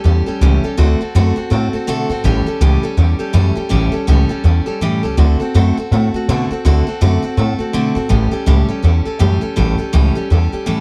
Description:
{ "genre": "rockabilly", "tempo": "164 BPM", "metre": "4/4", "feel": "swing 61% on 8ths", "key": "A mixolydian", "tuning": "A4 = 438 Hz", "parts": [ { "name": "picked steel-string acoustic guitar", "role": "accompaniment", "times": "0.0-10.8 s", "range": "A2 to A4", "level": "-20 LUFS", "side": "equal", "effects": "none" }, { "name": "upright bass", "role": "bass", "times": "0.0-10.8 s", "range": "A1 to B2", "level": "-16 LUFS", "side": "equal", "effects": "none" } ], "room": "light reverb", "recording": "none", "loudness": "-15 LUFS", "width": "mono", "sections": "0.0-10.8 A section", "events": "none", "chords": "0.0 A7; 0.8 D7; 2.2 A7; 5.2 D7; 8.1 A7", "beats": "0.05 0.41 | 0.78 1.15 1.51 1.88 | 2.25 2.61 2.98 3.35 | 3.71 4.08 4.45 4.81 | 5.18 5.54 5.91 6.28 | 6.64 7.01 7.37 7.74 | 8.11 8.47 8.84 9.20 | 9.57 9.94 10.30 10.67" }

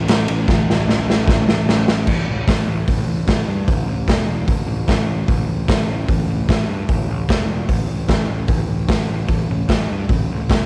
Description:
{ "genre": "garage rock duo or trio", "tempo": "149 BPM", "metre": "4/4", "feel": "straight", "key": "unclear", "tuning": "A4 = 441 Hz", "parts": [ { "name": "fuzz picked electric bass", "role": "bass", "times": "0.0-10.7 s", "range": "E1 to G2", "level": "-24 LUFS", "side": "equal", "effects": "overdrive" }, { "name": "raw garage drum kit", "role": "drums", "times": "0.1-10.6 s", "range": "crash cymbal, hi-hat, kick drum, ride cymbal, snare drum", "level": "-20 LUFS", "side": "equal", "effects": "cassette tape" } ], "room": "little or no reverb", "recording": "home recording on cassette", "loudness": "-18 LUFS", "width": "mono", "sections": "0.0-2.1 A section; 2.1-10.7 B section", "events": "drum fill 0.5-2.1", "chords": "none", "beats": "0.08 | 0.48 0.88 1.28 1.68 | 2.08 2.47 2.87 3.27 | 3.67 4.08 4.48 4.88 | 5.28 5.68 6.08 6.48 | 6.89 7.29 7.69 8.09 | 8.49 8.90 9.30 9.70 | 10.10 10.51" }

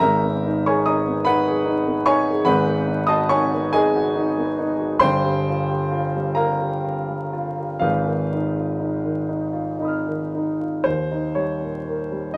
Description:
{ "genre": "classical, impressionist solo piano", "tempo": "38-50 BPM (dotted quarters)", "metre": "6/8", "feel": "rubato", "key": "B major, Eb mixolydian from 5.0 s", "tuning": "A4 = 440 Hz", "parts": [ { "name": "warm concert grand piano", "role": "solo", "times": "0.0-12.4 s", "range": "G1 to F6", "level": "-22 LUFS", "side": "equal", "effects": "none" } ], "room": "moderate studio reverb, RT60 0.6 s", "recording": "vinyl crackle", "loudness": "-22 LUFS", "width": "mono", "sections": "0.0-10.9 A section; 10.9-12.4 B section", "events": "none", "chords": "0.0 G#madd9; 2.5 Badd9/G#; 5.0 Gm7; 7.8 Abm6; 10.9 Eb", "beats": "| 0.02 1.25 | 2.45 3.72 | 5.00 6.36 | 7.83 9.31 | 10.87 12.34" }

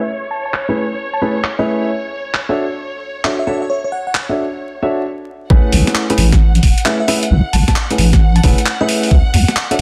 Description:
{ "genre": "UK garage, two-step garage", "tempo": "133 BPM", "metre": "4/4", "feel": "swing 65% on 16ths", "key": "A major", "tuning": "A4 = 438 Hz", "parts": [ { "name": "bell-like FM electric piano", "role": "melody", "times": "0.0-4.1, 6.9-9.1 s", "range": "C#5 to A5", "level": "-26 LUFS", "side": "equal", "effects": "chorus, dub echo" }, { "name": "warm studio violin section", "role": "sustained chords", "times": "0.0-9.8 s", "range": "C#5 to F#5", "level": "-28 LUFS", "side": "equal", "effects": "sidechain pumping" }, { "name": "breakbeat sampler-style drum kit", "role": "drums", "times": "0.5-9.8 s", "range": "handclaps, hi-hat, snare drum", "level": "-21 LUFS", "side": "equal", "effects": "soft clipping on snare" }, { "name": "dark concert grand piano", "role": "stabs", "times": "0.7-9.8 s", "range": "A3 to E5", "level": "-21 LUFS", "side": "equal", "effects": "low-pass filter, dub echo" }, { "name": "deep soft wobble bass", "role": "bass", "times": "5.5-9.8 s", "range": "E1 to D2", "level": "-14 LUFS", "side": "equal", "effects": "chorus" }, { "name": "electronic kick drum", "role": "drums", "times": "5.5-9.2 s", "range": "none", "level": "-14 LUFS", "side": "equal", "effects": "none" } ], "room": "light reverb, digital ambience", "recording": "dense, heavily limited modern master, vinyl crackle, low-pass filter", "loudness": "-15 LUFS", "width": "mono", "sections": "0.0-5.5 A section; 5.5-9.8 B section", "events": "stop 5.1-5.5; drop 5.5-9.8", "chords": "0.0 Amaj7; 1.9 Dmaj7; 5.5 Amaj7; 9.1 Dmaj7", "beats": "| 0.09 0.54 0.99 1.44 | 1.89 2.34 2.79 3.25 | 3.70 4.15 4.60 5.05 | 5.50 5.95 6.40 6.86 | 7.31 7.76 8.21 8.66 | 9.11 9.56" }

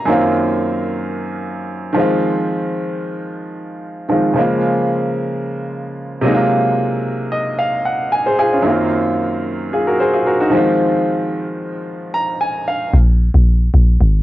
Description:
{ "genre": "amapiano", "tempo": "112 BPM", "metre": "4/4", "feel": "straight", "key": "Eb dorian", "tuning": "A4 = 440 Hz", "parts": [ { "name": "clear baby grand piano", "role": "accompaniment", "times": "0.0-13.0 s", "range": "Gb2 to Bb5", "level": "-16 LUFS", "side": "equal", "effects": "cassette tape" }, { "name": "deep log drum bass", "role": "bass", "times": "12.9-14.2 s", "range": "Ab1 to Bb1", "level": "-10 LUFS", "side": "equal", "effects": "none" } ], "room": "moderate small room reverb, RT60 0.5 s", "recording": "home recording on cassette", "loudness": "-15 LUFS", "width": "side -15 dB against mid", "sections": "0.0-12.9 A section; 12.9-14.2 B section", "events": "grand piano fill 7.0-8.7, 11.9-12.9; drop 12.9-14.2", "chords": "0.1 Ebm69/Gb; 2.0 Fm7; 4.4 Bbm7; 6.2 Gbmaj9#11; 8.7 Ebm69/Gb; 10.5 Fm7; 12.9 Absus2", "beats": "| 0.08 0.61 1.15 1.69 | 2.22 2.76 3.29 3.83 | 4.36 4.90 5.43 5.97 | 6.51 7.04 7.58 8.11 | 8.65 9.19 9.72 10.26 | 10.79 11.33 11.86 12.40 | 12.94 13.47 14.01" }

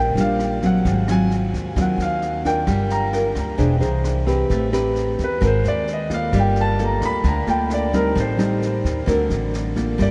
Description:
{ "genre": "bossa nova", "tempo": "131 BPM", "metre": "4/4", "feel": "straight", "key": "G minor", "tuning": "A4 = 440 Hz", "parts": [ { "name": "warm concert grand piano", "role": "melody", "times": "0.0-10.1 s", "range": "Bb4 to B5", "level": "-27 LUFS", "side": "equal", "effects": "subtle chorus, delay" }, { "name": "nylon-string guitar", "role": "accompaniment", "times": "0.0-10.1 s", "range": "Ab2 to B#4", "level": "-24 LUFS", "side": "equal", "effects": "none" }, { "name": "upright bass", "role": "bass", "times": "0.0-10.1 s", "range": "E1 to E2", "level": "-25 LUFS", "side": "equal", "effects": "none" }, { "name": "jazz brush drum kit", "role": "drums", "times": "0.2-10.1 s", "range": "kick drum, rim click, snare drum", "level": "-32 LUFS", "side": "equal", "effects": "none" } ], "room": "moderate huge ambient reverb, RT60 7.5 s", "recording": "dreamy mix soaked in reverb, nothing above 10.6 kHz", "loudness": "-20 LUFS", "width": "mono", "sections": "0.0-10.0 A section", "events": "grand piano solo 0.0-10.0", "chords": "0.0 Ebmaj9 (rootless); 0.8 Ab13; 2.7 Gm7; 3.6 E7alt; 4.5 Am9; 5.4 Ab9; 6.3 Gm9; 8.2 Am7b5; 9.1 D7b13", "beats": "0.39 | 0.85 1.30 1.76 2.22 | 2.67 3.13 3.59 4.05 | 4.50 4.96 5.42 5.88 | 6.33 6.79 7.25 7.71 | 8.16 8.62 9.08 9.54 | 9.99" }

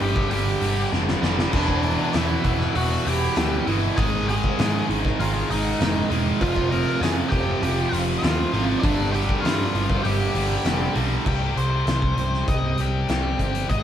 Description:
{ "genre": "quiet-loud alternative rock", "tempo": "99 BPM", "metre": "4/4", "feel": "straight", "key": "unclear", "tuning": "A4 = 441 Hz", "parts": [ { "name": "octave-fuzz lead guitar", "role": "melody", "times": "0.0-13.8 s", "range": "D4 to Bb5", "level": "-28 LUFS", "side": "equal", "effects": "distortion" }, { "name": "distorted electric guitar", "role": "riff", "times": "0.0-11.3 s", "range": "E2 to Ab3", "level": "-29 LUFS", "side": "equal", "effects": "overdrive" }, { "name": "overdriven electric guitar", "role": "riff", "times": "0.0-11.2 s", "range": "E2 to Ab3", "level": "-27 LUFS", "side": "right 7 dB", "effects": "phaser" }, { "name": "tight distorted guitar", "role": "riff", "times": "0.0-13.8 s", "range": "E2 to C4", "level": "-30 LUFS", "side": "left 7 dB", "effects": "distortion" }, { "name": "overdriven picked electric bass", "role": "bass", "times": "0.0-13.8 s", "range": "E1 to Ab2", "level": "-26 LUFS", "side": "equal", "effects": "none" }, { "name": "oversized low-tuned drum kit", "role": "drums", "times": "0.0-13.8 s", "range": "crash cymbal, hi-hat, kick drum, snare drum, splash cymbal", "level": "-25 LUFS", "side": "left 1 dB", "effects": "none" }, { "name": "picked plugged-in swing-style acoustic guitar", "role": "arpeggios", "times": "11.3-13.8 s", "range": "Ab2 to Eb4", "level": "-31 LUFS", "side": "right 2 dB", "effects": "none" } ], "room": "moderate stone room reverb, RT60 1.2 s", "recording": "band playing live in one room, vinyl crackle", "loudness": "-20 LUFS", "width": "side -10 dB against mid", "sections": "0.0-11.3 A section; 11.3-13.8 B section", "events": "drum fill 0.9-1.5; lead electric guitar solo 11.3-13.8", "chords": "0.0 G5; 1.5 Em; 4.0 Ab5; 6.4 F5; 8.8 G5; 11.3 Cm", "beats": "0.32 0.93 | 1.54 2.15 2.76 3.37 | 3.98 4.58 5.19 5.80 | 6.41 7.01 7.62 8.23 | 8.84 9.44 10.05 10.65 | 11.26 11.87 12.48 13.09 | 13.69" }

